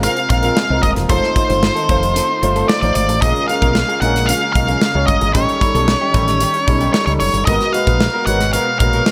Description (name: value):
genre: polished 1980s jazz-funk pop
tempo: 113 BPM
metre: 4/4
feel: straight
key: unclear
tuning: A4 = 443 Hz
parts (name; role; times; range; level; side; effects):
- octave-fuzz lead guitar; melody; 0.0-9.1 s; C5 to Gb5; -20 LUFS; equal; distortion
- warm baby grand piano; accompaniment; 0.0-9.1 s; G3 to Db5; -24 LUFS; equal; subtle chorus
- phased string machine; sustained chords; 0.0-9.1 s; Cb3 to Ab4; -30 LUFS; equal; none
- electric guitar through a small old amp; riff; 0.0-9.1 s; Cb4 to C5; -27 LUFS; equal; analog chorus
- woody fretless electric bass; bass; 0.0-9.0 s; Eb1 to Db2; -22 LUFS; equal; none
- modern studio drum kit; drums; 0.0-9.1 s; hi-hat, kick drum, snare drum; -21 LUFS; equal; none
room: light reverb, small room reverb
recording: none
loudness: -15 LUFS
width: mono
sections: 0.0-9.1 A section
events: none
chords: 0.0 Ab69; 1.1 F7; 3.2 Bbm7; 5.3 A7#11; 7.5 Abm9